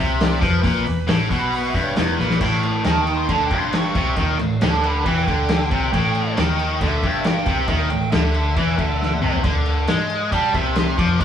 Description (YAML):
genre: blues rock power trio and southern rock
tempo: 136 BPM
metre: 4/4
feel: straight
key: unclear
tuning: A4 = 440 Hz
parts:
  - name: bluesy overdriven lead guitar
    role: second line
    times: 0.0-11.2 s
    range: B4 to D6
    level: -26 LUFS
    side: right 4 dB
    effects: distortion
  - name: distorted electric guitar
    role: riff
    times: 0.0-11.2 s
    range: E2 to G#3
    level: -21 LUFS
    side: left 1 dB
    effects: overdrive
  - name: vintage muted picked electric bass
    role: bass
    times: 0.0-11.2 s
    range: E1 to G#2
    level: -23 LUFS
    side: equal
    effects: none
  - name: vintage drum kit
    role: drums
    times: 0.2-11.2 s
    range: crash cymbal, hi-hat, kick drum, snare drum, toms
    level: -22 LUFS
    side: left 1 dB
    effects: none
room: moderate stone room reverb, RT60 1.0 s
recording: band playing live in one room, small room ambience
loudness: -17 LUFS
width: side -9 dB against mid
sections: 0.0-2.4 A section; 2.4-11.2 A section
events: lead electric guitar solo 0.0-11.2; drum fill 2.2, 9.0-9.4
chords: 0.0 Cadd11; 0.6 E5; 2.4 A7(no3); 9.4 D5